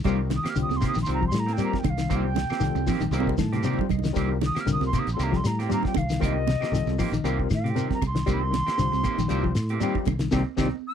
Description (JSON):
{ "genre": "afrobeat", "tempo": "117 BPM", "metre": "4/4", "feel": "swing 55% on 16ths", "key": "C dorian", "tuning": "A4 = 438 Hz", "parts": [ { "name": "electric guitar through a small old amp", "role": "stabs", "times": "0.0-10.7 s", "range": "Eb3 to G4", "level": "-32 LUFS", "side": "right 8 dB", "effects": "none" }, { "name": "fingered electric bass", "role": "bass", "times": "0.0-10.7 s", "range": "Bb1 to A2", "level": "-27 LUFS", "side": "equal", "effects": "none" }, { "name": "damped 70s drum kit", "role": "drums", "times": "0.0-10.7 s", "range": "hi-hat, kick drum, snare drum", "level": "-31 LUFS", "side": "equal", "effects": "none" }, { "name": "congas", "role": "percussion", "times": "0.0-10.7 s", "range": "none", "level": "-32 LUFS", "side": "right 19 dB", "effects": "none" }, { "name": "overdriven tine electric piano", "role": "accompaniment", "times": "0.1-10.7 s", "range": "G3 to A5", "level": "-32 LUFS", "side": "left 17 dB", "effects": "medium tremolo" }, { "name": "semi-hollow electric guitar", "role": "arpeggios", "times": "0.1-10.7 s", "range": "C3 to G3", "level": "-29 LUFS", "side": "left 6 dB", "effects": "none" }, { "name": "claves", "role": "percussion", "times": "0.1-10.7 s", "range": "none", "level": "-43 LUFS", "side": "left 30 dB", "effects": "none" }, { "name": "shekere", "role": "percussion", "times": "0.1-10.7 s", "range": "none", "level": "-33 LUFS", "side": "left 2 dB", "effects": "none" }, { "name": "silver concert flute", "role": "melody", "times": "0.4-10.9 s", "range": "Eb5 to F6", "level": "-30 LUFS", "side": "right 1 dB", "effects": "none" } ], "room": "little or no reverb", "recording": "dry, close 1970s-style studio recording", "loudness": "-22 LUFS", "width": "side -8 dB against mid", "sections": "0.0-10.9 A section", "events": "flute solo 0.0-10.9; drum fill 3.1-4.2; tine electric piano fill 3.1-4.2; band accent 10.3-10.9", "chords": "0.0 Cm7" }